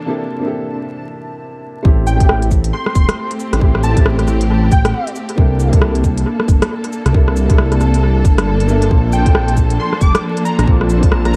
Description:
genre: future garage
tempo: 136 BPM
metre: 4/4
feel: swing 60% on 16ths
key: unclear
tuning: A4 = 440 Hz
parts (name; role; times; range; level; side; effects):
- felt-muted upright piano; accompaniment; 0.0-11.4 s; C3 to A4; -27 LUFS; equal; sidechain pumping, analog delay
- rich symphonic string section; sustained chords; 0.0-11.4 s; E3 to C5; -24 LUFS; equal; sidechain pumping
- backwards swelling texture; texture; 0.0-1.0, 8.9-11.4 s; A5; -39 LUFS; equal; built-in reverb
- dark detuned saw bass; bass; 1.8-11.4 s; E1 to C2; -17 LUFS; equal; sidechain pumping
- electronic kick drum; drums; 1.8-11.1 s; none; -14 LUFS; equal; small room reverb
- plucky unison lead; melody; 2.1-5.1, 9.1-11.4 s; G5 to D6; -25 LUFS; equal; analog chorus, analog delay
- organic electronic drum kit; drums; 2.1-11.4 s; cabasa, hi-hat, rim click; -23 LUFS; equal; small room reverb, dub echo
room: little or no reverb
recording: echo-heavy mix, vinyl crackle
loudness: -14 LUFS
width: mono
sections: 0.0-1.9 A section; 1.9-11.4 B section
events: break 1.0-1.9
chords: 0.0 C13; 1.9 Am7; 5.4 C13; 8.9 Bbmaj9

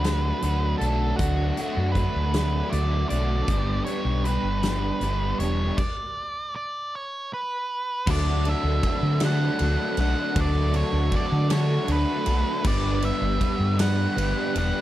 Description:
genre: indie rock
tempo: 52 BPM (dotted quarters)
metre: 6/8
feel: straight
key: D major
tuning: A4 = 440 Hz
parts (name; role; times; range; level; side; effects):
- octave-fuzz lead guitar; melody; 0.0-14.8 s; F#4 to F#5; -29 LUFS; right 2 dB; distortion, slapback echo
- overdriven electric guitar; riff; 0.0-14.8 s; G2 to B4; -30 LUFS; right 6 dB; ensemble chorus
- raw garage guitar; riff; 0.0-14.8 s; G2 to D4; -30 LUFS; left 6 dB; overdrive
- fingered electric bass; bass; 0.0-14.7 s; E1 to D3; -24 LUFS; equal; none
- big rock drum kit; drums; 0.0-14.7 s; crash cymbal, hi-hat, kick drum, ride cymbal, snare drum; -30 LUFS; equal; none
- brassy analog pad; sustained chords; 8.1-14.8 s; D4 to C#6; -36 LUFS; left 1 dB; chorus, tremolo
room: little or no reverb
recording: dry, close 1970s-style studio recording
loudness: -22 LUFS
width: side -14 dB against mid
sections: 0.0-8.1 A section; 8.1-14.8 B section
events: stop 5.8-8.1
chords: 0.0 D6; 3.5 G; 8.1 D6; 12.6 G

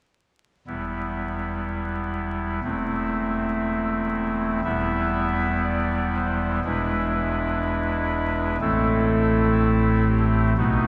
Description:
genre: classical, chorale-style piece for pipe organ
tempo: 61 BPM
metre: 4/4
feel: rubato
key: E minor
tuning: A4 = 440 Hz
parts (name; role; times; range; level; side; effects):
- pipe organ, soft reed; solo; 0.7-10.9 s; E1 to E5; -24 LUFS; equal; none
room: wet cathedral reverb, RT60 4.3 s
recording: heard from further back in the room, vinyl crackle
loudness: -24 LUFS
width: mono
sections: 0.7-4.6 A section; 4.6-10.9 B section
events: none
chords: 0.7 Em; 2.6 Am/E; 4.6 Em; 6.6 E7; 8.6 Am

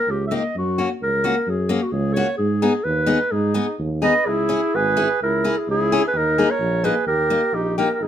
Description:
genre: alpine folk, alpine dance band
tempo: 129 BPM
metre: 2/4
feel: rubato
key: unclear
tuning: A4 = 440 Hz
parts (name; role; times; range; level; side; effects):
- mellow clarinet; melody; 0.0-8.1 s; F#4 to E5; -21 LUFS; equal; none
- warm tuba; bass; 0.1-8.1 s; G#1 to G#2; -24 LUFS; right 1 dB; none
- picked steel-string acoustic guitar; accompaniment; 0.3-7.9 s; A#3 to G#4; -22 LUFS; left 4 dB; none
- mellow trumpet; second line; 3.3-8.1 s; D#4 to B4; -25 LUFS; right 4 dB; none
room: light reverb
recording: minimal, uncompressed stereo recording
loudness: -18 LUFS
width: side -10 dB against mid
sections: 0.0-8.1 A section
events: none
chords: 0.0 D#; 0.5 F#; 2.4 G#m; 4.3 C#m; 6.1 D#sus4; 7.0 D#

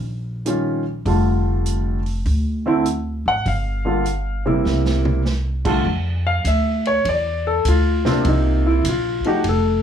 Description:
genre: jazz piano trio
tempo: 100 BPM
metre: 4/4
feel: swing 67% on 8ths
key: F major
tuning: A4 = 441 Hz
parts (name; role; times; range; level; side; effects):
- upright bass; bass; 0.0-9.8 s; F1 to F2; -21 LUFS; equal; none
- warm concert grand piano; melody; 0.5-9.8 s; C3 to Gb5; -20 LUFS; equal; none
- vintage drum kit; drums; 0.5-9.6 s; crash cymbal, hi-hat, kick drum, ride cymbal, snare drum, toms; -29 LUFS; right 3 dB; none
room: light reverb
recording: none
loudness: -17 LUFS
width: side -8 dB against mid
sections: 0.0-5.9 A section; 5.9-9.8 B section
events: drum fill 4.7-5.3; grand piano solo 5.9-9.8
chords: 0.0 Eb9; 1.1 F69; 2.3 D5; 3.5 Gm7; 4.7 C7; 5.9 F5; 8.2 Cm7

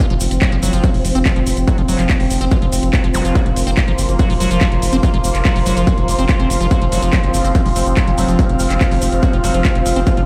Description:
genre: psychedelic trance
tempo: 143 BPM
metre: 4/4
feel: straight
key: unclear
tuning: A4 = 439 Hz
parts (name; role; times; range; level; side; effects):
- bubbling stepped-filter texture; sustained chords; 0.0-10.3 s; F3 to C4; -26 LUFS; equal; chorus, built-in reverb, sidechain pumping
- liquid acid bass; riff; 0.0-10.2 s; F3 to C4; -25 LUFS; equal; phaser, cassette tape, sidechain pumping, delay
- drum and bass drum kit; drums; 0.0-10.3 s; handclaps, hi-hat; -28 LUFS; equal; none
- electronic kick drum; drums; 0.0-10.2 s; none; -17 LUFS; equal; distortion
- tube shaker; percussion; 0.0-10.2 s; none; -32 LUFS; equal; none
- airy breathy pad; texture; 0.0-10.3 s; F4 to F6; -25 LUFS; equal; chorus, sidechain pumping
- round analog bass; bass; 0.1-10.2 s; F1 to Gb1; -20 LUFS; equal; none
- zap; sound effects; 3.1-3.2 s; none; -30 LUFS; equal; none
room: light reverb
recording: played on a big sound system in a bare room, large studio reverb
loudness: -15 LUFS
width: mono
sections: 0.0-10.3 A section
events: none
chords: 0.0 F5

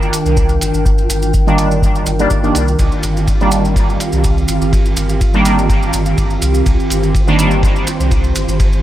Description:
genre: dub techno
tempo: 124 BPM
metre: 4/4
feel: straight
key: C minor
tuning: A4 = 439 Hz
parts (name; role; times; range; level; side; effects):
- warbly tape-like pad; sustained chords; 0.0-8.8 s; Eb3 to Bb4; -19 LUFS; right 2 dB; chorus, built-in reverb, sidechain pumping
- pure sine sub bass; bass; 0.0-8.8 s; G1 to C2; -18 LUFS; equal; sidechain pumping
- maracas; percussion; 0.0-8.8 s; none; -26 LUFS; right 2 dB; none
- flickering grainy texture; texture; 0.0-8.8 s; F4 to G5; -26 LUFS; equal; built-in reverb, sidechain pumping
- lo-fi sampler-style drum kit; drums; 0.1-8.7 s; hi-hat, ride cymbal; -28 LUFS; right 2 dB; overdrive, small room ambience
- electronic kick drum; drums; 0.4-8.7 s; none; -16 LUFS; equal; small room ambience
- resonant sweep polysynth; stabs; 1.5-7.5 s; Eb3 to D4; -18 LUFS; right 1 dB; chorus, phaser, sidechain pumping, dub echo
room: light reverb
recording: none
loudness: -11 LUFS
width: side -13 dB against mid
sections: 0.0-8.8 A section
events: filter sweep on analog polysynth 0.0-8.8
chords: 0.0 Cm9

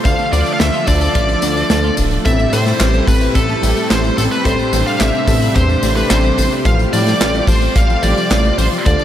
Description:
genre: synthwave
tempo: 109 BPM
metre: 4/4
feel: straight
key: A minor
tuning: A4 = 439 Hz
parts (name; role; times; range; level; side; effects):
- soft supersaw; sustained chords; 0.0-9.0 s; C3 to A4; -21 LUFS; right 1 dB; lush chorus, sidechain pumping
- modern studio drum kit; drums; 0.0-9.0 s; handclaps, hi-hat, snare drum, tambourine; -22 LUFS; right 1 dB; none
- high-gain lead guitar; melody; 0.1-9.0 s; A4 to F5; -19 LUFS; equal; distortion, diffuse ambient delay
- string machine, violins; second line; 0.1-9.0 s; A5 to F6; -27 LUFS; equal; ensemble chorus, tape echo
- clean electric guitar; riff; 0.1-9.0 s; F3 to A4; -26 LUFS; left 3 dB; wide subtle chorus, tape echo
- chorused synth bass; bass; 0.1-9.0 s; D1 to A2; -17 LUFS; equal; none
- kick drum; drums; 0.1-9.0 s; none; -17 LUFS; equal; none
- mellow FM electric piano; stabs; 2.3-9.0 s; A2 to A4; -22 LUFS; left 2 dB; chorus, tape echo
room: moderate cathedral reverb, RT60 5.5 s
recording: dreamy mix soaked in reverb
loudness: -12 LUFS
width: side -11 dB against mid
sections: 0.0-9.0 A section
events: none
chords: 0.1 Dm; 2.3 Am7; 6.7 Fadd9/A

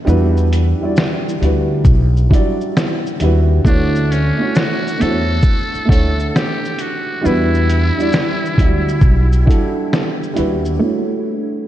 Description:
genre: lo-fi hip hop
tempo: 67 BPM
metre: 4/4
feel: swing 64% on 16ths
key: E dorian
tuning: A4 = 439 Hz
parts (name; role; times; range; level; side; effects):
- dark upright piano; accompaniment; 0.0-11.7 s; F#3 to F#5; -19 LUFS; right 1 dB; cassette tape, low-pass filter
- upright bass; bass; 0.1-10.8 s; B1 to E2; -15 LUFS; equal; none
- lo-fi sampler-style drum kit; drums; 0.1-10.8 s; hi-hat, kick drum, shaker, snare drum; -16 LUFS; equal; none
- trumpet with metal mute; melody; 3.7-9.9 s; C#4 to A4; -23 LUFS; equal; low-pass filter, diffuse ambient delay
room: moderate lush hall reverb, RT60 2.8 s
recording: dreamy mix soaked in reverb, cassette tape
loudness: -13 LUFS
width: side -12 dB against mid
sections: 0.0-10.8 A section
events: none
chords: 0.1 Em9; 3.6 Dmaj7; 7.2 Em9; 10.8 Dmaj7

